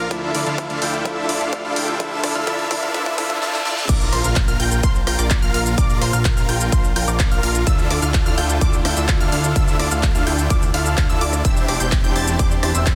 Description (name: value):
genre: EDM, festival progressive house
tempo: 127 BPM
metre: 4/4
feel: straight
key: unclear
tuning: A4 = 440 Hz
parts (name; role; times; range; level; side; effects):
- direct-recorded clean electric guitar; accompaniment; 0.0-3.4 s; F3 to E4; -31 LUFS; equal; sidechain pumping, dub echo
- warm chamber string section; sustained chords; 0.0-12.9 s; D3 to E6; -32 LUFS; equal; sidechain pumping
- big supersaw lead; riff; 0.0-12.9 s; D4 to A5; -25 LUFS; equal; sidechain pumping, dub echo
- fat analog bass; bass; 0.0-12.9 s; E1 to D2; -26 LUFS; equal; sidechain pumping
- riser, reverse cymbal and impact; sound effects; 0.0-5.8 s; none; -35 LUFS; equal; none
- big-room dance drum kit; drums; 0.1-12.9 s; crash cymbal, handclaps, hi-hat, ride cymbal, rim click, shaker, snare drum; -28 LUFS; equal; high-pass filter on hats, high-pass filter on snare, high-pass filter on cymbals, high-pass filter on perc
- electronic kick drum; drums; 0.1-12.9 s; none; -21 LUFS; equal; high-pass filter on kick
- unison pluck; arpeggios; 3.9-12.9 s; C6 to A6; -30 LUFS; equal; phaser, sidechain pumping, dub echo
room: light reverb, digital ambience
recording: dense, heavily limited modern master, high-pass filter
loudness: -19 LUFS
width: mono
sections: 0.0-3.9 A section; 3.9-12.9 B section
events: build-up 0.0-3.9; drum fill 0.1-3.4, 3.4-3.9; reverse cymbal 2.9-3.9; drop 3.9-12.9; impact 3.9-5.8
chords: 0.1 Dmadd9; 3.9 Bb; 7.7 Dmadd9; 11.4 Cadd9/E